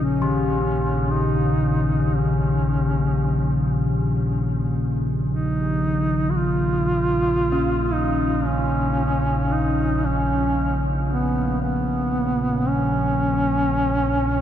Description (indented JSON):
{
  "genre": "dark ambient drone",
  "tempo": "57 BPM",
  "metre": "4/4",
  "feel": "straight",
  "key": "Bb phrygian",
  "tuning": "A4 = 440 Hz",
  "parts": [
    { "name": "mellow duduk", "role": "melody", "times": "0.0-14.4 s", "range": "Cb4 to Gb4", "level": "-24 LUFS", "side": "equal", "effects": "ping-pong delay" },
    { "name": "analog drone", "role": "drone", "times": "0.0-14.4 s", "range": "Bb1 to Db3", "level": "-22 LUFS", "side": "equal", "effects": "chorus" },
    { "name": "bronze singing bowl", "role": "arpeggios", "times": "0.2-13.8 s", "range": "Eb3 to Db4", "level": "-27 LUFS", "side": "left 2 dB", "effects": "ping-pong delay" }
  ],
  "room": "moderate huge ambient reverb, RT60 8.8 s",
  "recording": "none",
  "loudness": "-19 LUFS",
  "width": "side -10 dB against mid",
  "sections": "0.0-14.4 A section",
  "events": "fade-in on duduk 0.0-14.4; filter sweep on synth drone 0.0-14.4",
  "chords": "0.0 Bbm"
}